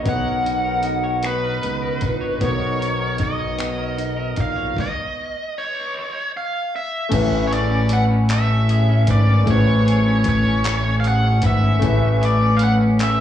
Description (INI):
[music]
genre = slow six-eight R&B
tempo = 51 BPM (dotted quarters)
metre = 6/8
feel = straight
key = A major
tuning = A4 = 440 Hz
[part]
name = biting lead guitar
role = melody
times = 0.0-13.2 s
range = B4 to F#5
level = -23 LUFS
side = equal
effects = overdrive, slapback echo
[part]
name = semi-hollow electric guitar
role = second line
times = 0.0-13.2 s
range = A3 to C#5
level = -27 LUFS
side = right 2 dB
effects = spring reverb, slapback echo
[part]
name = clear grand piano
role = accompaniment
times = 0.0-13.2 s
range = E3 to E5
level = -23 LUFS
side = left 3 dB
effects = none
[part]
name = fat analog bass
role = bass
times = 0.0-13.2 s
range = G#1 to C#2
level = -20 LUFS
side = equal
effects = none
[part]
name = dusty soul sampler-style drum kit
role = drums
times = 0.1-13.2 s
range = crash cymbal, finger snaps, handclaps, hi-hat, kick drum, snare drum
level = -25 LUFS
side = equal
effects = none
[sound]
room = little or no reverb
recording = live gig heard through the venue's PA, club reverb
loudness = -17 LUFS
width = side -10 dB against mid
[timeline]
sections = 0.0-7.1 A section; 7.1-13.2 B section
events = stop 4.8-7.1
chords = 0.0 Bmaj9; 7.1 Amaj9